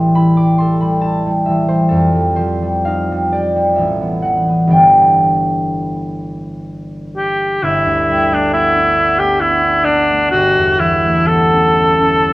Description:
classical, impressionist duo for cor anglais and harp; 60-69 BPM; 3/4; rubato; G major; A4 = 443 Hz
concert harp; accompaniment; 0.0-12.3 s; G1 to E6; -14 LUFS; equal
warm cor anglais; melody; 7.2-12.3 s; D4 to A4; -12 LUFS; equal
wet recital hall reverb, RT60 1.5 s; worn, warbling old tape, cassette tape, warbly pitch drift; -11 LUFS; side -19 dB against mid
0.0-7.6 A section; 7.6-12.3 B section
0.0 Am7; 1.9 F9; 3.8 Asus2; 4.7 G6; 7.6 G69; 10.3 Aadd9/G
0.15 1.03 | 1.91 2.86 3.78 | 4.71 5.68 6.66 | 7.63 8.54 9.41 | 10.32 11.29 12.21

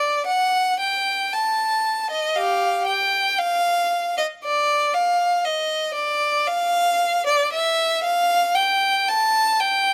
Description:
classical, baroque-style suite movement for unaccompanied violin; 58 BPM; 4/4; rubato; A4 = 438 Hz
clear violin; solo; 0.0-9.9 s; G4 to A5; -21 LUFS; equal
light reverb; close, detailed microphones; -21 LUFS; mono
0.0-9.9 A section
0.26 1.31 | 2.36 3.40 4.44 5.46 | 6.50 7.53 8.56 9.61

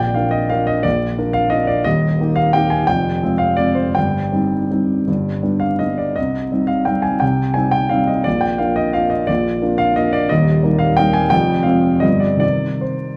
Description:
classical, piano waltz; 140-190 BPM; 3/4; rubato; C minor; A4 = 441 Hz
warm grand piano; solo; 0.0-13.2 s; Eb1 to Ab5; -17 LUFS; equal
moderate recital hall reverb, RT60 1.6 s; dark, warm production, vinyl crackle; -17 LUFS; mono
0.0-13.2 A section
0.0 Bb; 1.9 Eb; 2.9 Fm; 4.0 Cm/G; 5.1 G; 6.2 Cm; 8.3 Bb; 10.3 Eb; 11.3 Fm; 12.0 G7; 12.4 Cm
0.16 0.51 | 0.85 1.18 1.52 | 1.85 2.19 2.54 | 2.87 3.21 3.57 | 3.96 4.33 4.71 | 5.08 5.43 5.81 | 6.17 6.52 6.87 | 7.22 7.55 7.91 | 8.26 8.61 8.95 | 9.29 9.63 9.97 | 10.30 10.63 10.98 | 11.32 11.65 12.03 | 12.42 12.83

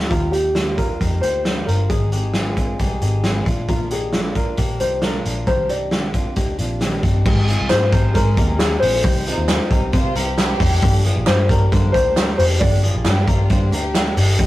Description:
jangly indie pop; 134 BPM; 4/4; straight; A4 = 435 Hz
picked steel-string acoustic guitar; accompaniment; 0.0-14.5 s; G2 to Bb4; -29 LUFS; right 2 dB
direct-recorded clean electric guitar; arpeggios; 0.0-14.5 s; Bb3 to C5; -29 LUFS; left 3 dB
vintage muted picked electric bass; bass; 0.0-14.5 s; F1 to C3; -20 LUFS; equal
dark upright piano; melody; 0.1-14.1 s; F4 to D5; -22 LUFS; left 1 dB
loose indie drum kit; drums; 0.1-14.5 s; crash cymbal, hi-hat, kick drum, snare drum; -20 LUFS; equal
group handclap; percussion; 7.7-14.1 s; -28 LUFS; right 4 dB
warm studio violin section; second line; 9.3-14.5 s; Eb4 to Ab4; -28 LUFS; right 2 dB
moderate stone room reverb, RT60 0.9 s; rough rehearsal-room recording, warm saturation; -16 LUFS; side -16 dB against mid
0.0-7.3 A section; 7.3-14.5 B section
0.1 Ebadd9; 1.9 Ab; 3.5 Bb; 5.5 Cmadd9; 7.3 Ab; 9.0 Cm; 10.8 Gm
| 0.11 0.56 1.01 1.45 | 1.90 2.35 2.79 3.24 | 3.69 4.13 4.58 5.03 | 5.47 5.92 6.37 6.81 | 7.26 7.71 8.15 8.60 | 9.04 9.49 9.93 10.38 | 10.83 11.27 11.72 12.16 | 12.61 13.05 13.50 13.95 | 14.39

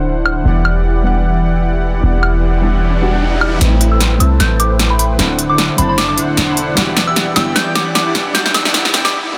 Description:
future bass; 152 BPM; 4/4; swing 56% on 16ths, half-time; E minor; A4 = 443 Hz
soft round pluck; accompaniment; 0.0-9.4 s; F#3 to F#5; -26 LUFS; equal; chorus, dub echo
soft supersaw; riff; 0.0-9.1 s; D3 to A5; -20 LUFS; equal; low-pass filter
warm 808-style bass; bass; 0.0-9.1 s; D1 to C2; -18 LUFS; equal
big-room dance drum kit; drums; 0.3-9.1 s; hi-hat, snare drum, woodblock; -18 LUFS; equal
riser; sound effects; 1.8-9.1 s; -29 LUFS; equal
soft synth bell; melody; 3.9-9.1 s; B5 to G6; -22 LUFS; equal; chorus, vintage 12-bit sampler grit, low-pass filter, dub echo
light reverb; dense, heavily limited modern master, high-pass filter; -14 LUFS; mono
0.0-3.6 A section; 3.6-9.4 B section
filter sweep on supersaw synth 0.0-3.6, 3.6-9.4; riser 1.8-3.6; build-up 3.6-9.4; drum fill 3.6-9.1; filter sweep on synth bell 3.6-9.4; filter sweep 3.6-9.4; break 9.1
0.5 Em7; 3.6 Am7; 5.2 D9; 6.8 Em7
0.06 | 0.45 0.85 1.24 1.64 | 2.03 2.43 2.82 3.22 | 3.61 4.01 4.40 4.79 | 5.19 5.58 5.98 6.37 | 6.77 7.16 7.56 7.95 | 8.35 8.74 9.14

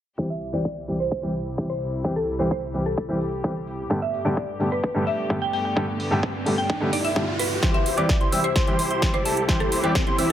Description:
EDM, festival progressive house; 129 BPM; 4/4; straight; C major; A4 = 440 Hz
warm baby grand piano; accompaniment; 0.2-10.3 s; G2 to G4; -26 LUFS; equal; sidechain pumping
warm studio string section; sustained chords; 0.2-10.3 s; C2 to G4; -31 LUFS; left 1 dB; sidechain pumping, low-pass filter
electronic kick drum; drums; 0.2-10.0 s; -25 LUFS; equal; overdrive, high-pass filter on kick
mallet-like synth pluck; melody; 0.3-10.0 s; A4 to G5; -29 LUFS; equal; lush chorus, dub echo
big-room dance drum kit; drums; 0.4-10.3 s; hi-hat, snare drum; -29 LUFS; right 1 dB
riser; sound effects; 4.8-10.3 s; -32 LUFS; right 1 dB
plucky unison lead; arpeggios; 7.6-10.3 s; A5 to E6; -28 LUFS; right 1 dB; sidechain pumping, dub echo
supersaw chords; riff; 7.6-10.3 s; E4 to E5; -28 LUFS; right 1 dB; sidechain pumping, low-pass filter
light reverb, digital ambience; low-pass filter; -21 LUFS; side -11 dB against mid
0.2-7.6 A section; 7.6-10.3 B section
filter sweep 0.2-7.6; riser 4.8-7.6, 7.6-10.3; build-up 7.6-10.3; drum fill 7.6-10.3; filter sweep on supersaw synth 7.6-10.3
0.2 C; 3.9 Gadd9; 7.6 C
| 0.18 0.65 1.11 1.58 | 2.04 2.51 2.98 3.44 | 3.91 4.37 4.84 5.30 | 5.77 6.23 6.70 7.16 | 7.63 8.09 8.56 9.02 | 9.49 9.95

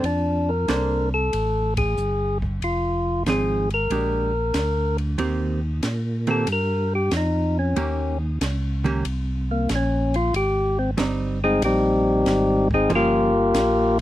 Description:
soul jazz organ trio; 93 BPM; 4/4; swing 69% on 8ths; Bb major, Eb major from 5.2 s; A4 = 435 Hz
percussive tonewheel organ; melody; 0.0-14.0 s; G3 to Bb4; -21 LUFS; left 1 dB; overdrive, stopped rotary speaker
hollow-body jazz guitar; accompaniment; 0.0-13.3 s; Eb3 to C5; -25 LUFS; right 4 dB
tonewheel organ; bass; 0.0-14.0 s; F1 to Bb2; -24 LUFS; equal; overdrive, chorus vibrato, slow rotary speaker
compact cocktail drum kit; drums; 0.0-14.0 s; hi-hat, kick drum, ride cymbal, snare drum; -32 LUFS; equal
little or no reverb; dry, close 1970s-style studio recording; -20 LUFS; side -14 dB against mid
0.0-5.2 A section; 5.2-14.0 B section
band accent 1.7-2.0; tonewheel organ solo 5.2-14.0
0.0 Bbmaj9; 2.6 Fm7; 3.9 Bb6; 5.2 Eb6; 7.8 Eb7; 10.3 Abmaj7; 12.9 Gm7b5
| 0.04 0.69 1.33 1.97 | 2.62 3.26 3.91 4.55 | 5.19 5.84 6.48 7.12 | 7.77 8.41 9.05 9.70 | 10.34 10.98 11.63 12.27 | 12.91 13.56

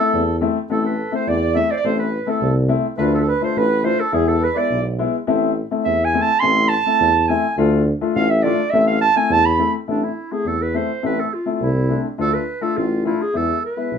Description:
klezmer; 104 BPM; 2/4; straight; A harmonic minor; A4 = 438 Hz
mellow clarinet; melody; 0.0-14.0 s; D4 to C6; -20 LUFS; right 4 dB
mellow accordion; second line; 0.0-9.7 s; G#4 to C6; -24 LUFS; right 4 dB
warm upright piano; accompaniment; 0.0-14.0 s; G#3 to F4; -22 LUFS; left 6 dB
warm tuba; bass; 0.1-14.0 s; A1 to E2; -21 LUFS; equal
moderate studio reverb, RT60 0.6 s; band playing live in one room; -16 LUFS; side -7 dB against mid
0.7-9.9 A section; 9.9-14.0 B section
clarinet solo 0.7-9.9
0.0 Am; 3.0 Dm; 4.1 E; 5.3 Am; 7.6 Dm; 8.7 Am; 12.2 Dm; 13.3 E
0.13 | 0.70 1.27 | 1.84 2.42 | 2.99 3.56 | 4.13 4.71 | 5.28 5.86 | 6.43 7.00 | 7.58 8.15 | 8.73 9.30 | 9.88 10.45 | 11.03 11.61 | 12.19 12.76 | 13.34 13.92

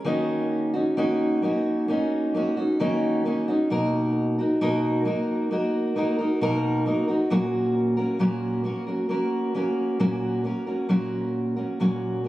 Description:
pop; 66 BPM; 4/4; straight; A4 = 440 Hz
fingerpicked steel-string acoustic guitar; solo; 0.0-12.3 s; A#2 to A#4; -22 LUFS; equal; tape echo
light reverb; recorded on a phone in the room, club reverb; -22 LUFS; side -15 dB against mid
0.1-12.3 A section
0.1 D#m7; 3.7 Bmaj7; 7.3 F#/A#
| 0.06 0.98 1.89 2.81 | 3.71 4.62 5.52 6.41 | 7.31 8.20 9.10 10.00 | 10.90 11.80

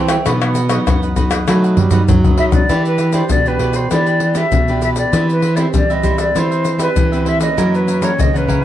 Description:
samba and choro; 98 BPM; 4/4; straight; E minor; A4 = 440 Hz
breathy tenor saxophone; second line; 0.0-2.7 s; F#3 to C4; -23 LUFS; right 5 dB
cavaquinho; accompaniment; 0.0-8.6 s; E4 to G5; -24 LUFS; right 4 dB
nylon-string guitar; accompaniment; 0.0-8.6 s; F#2 to G4; -22 LUFS; equal
nylon-string guitar; bass; 0.0-8.6 s; B2 to B3; -18 LUFS; equal
tube shaker, pandeiro, tamborim and surdo; percussion; 0.1-8.6 s; -17 LUFS; left 2 dB
concert flute; melody; 2.4-8.6 s; B4 to E5; -18 LUFS; equal
light reverb; dark, warm production; -12 LUFS; side -12 dB against mid
0.0-2.7 A section; 2.7-8.6 B section
drum fill 1.5-2.7
0.3 B; 2.7 Em7; 5.1 Cmaj7/E; 7.6 F#7
| 0.26 0.87 1.48 2.09 | 2.70 3.31 3.92 4.53 | 5.14 5.75 6.36 6.97 | 7.58 8.19

